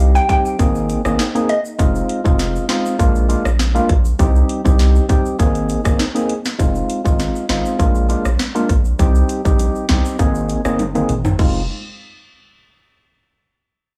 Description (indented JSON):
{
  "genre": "dancehall",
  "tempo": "100 BPM",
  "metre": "4/4",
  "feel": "straight",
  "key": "F dorian",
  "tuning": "A4 = 440 Hz",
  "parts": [
    { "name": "percussive organ stab", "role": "accompaniment", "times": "0.0-11.6 s", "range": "G3 to Ab4", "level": "-22 LUFS", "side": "equal", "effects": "chorus, low-pass filter" },
    { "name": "saturated sub bass", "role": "bass", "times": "0.0-11.7 s", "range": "F1 to C2", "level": "-19 LUFS", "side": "equal", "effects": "none" },
    { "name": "glassy wavetable pluck", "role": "melody", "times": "0.2-1.6 s", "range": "Eb5 to G5", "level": "-23 LUFS", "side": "equal", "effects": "chorus, tape echo" },
    { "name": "egg shaker and timbales", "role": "percussion", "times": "0.2-11.7 s", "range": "none", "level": "-34 LUFS", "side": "equal", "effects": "none" },
    { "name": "island pop drum kit", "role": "drums", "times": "0.3-11.5 s", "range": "crash cymbal, hi-hat, kick drum, rim click, snare drum, toms", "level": "-21 LUFS", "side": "equal", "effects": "none" }
  ],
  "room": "light reverb",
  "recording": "blown-out, overdriven recording, overdrive, small room ambience",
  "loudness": "-17 LUFS",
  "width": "mono",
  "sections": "0.0-6.6 A section; 6.6-11.4 B section; 11.4-13.8 C section",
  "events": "drum fill 10.8-11.4",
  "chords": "0.0 Cm; 0.6 Abadd9; 1.8 Fm7; 3.0 Bb7; 4.2 Cm; 5.4 Abadd9; 6.6 Fm7; 7.8 Bb7; 9.0 Cm; 10.2 Abadd9; 11.4 Fm7"
}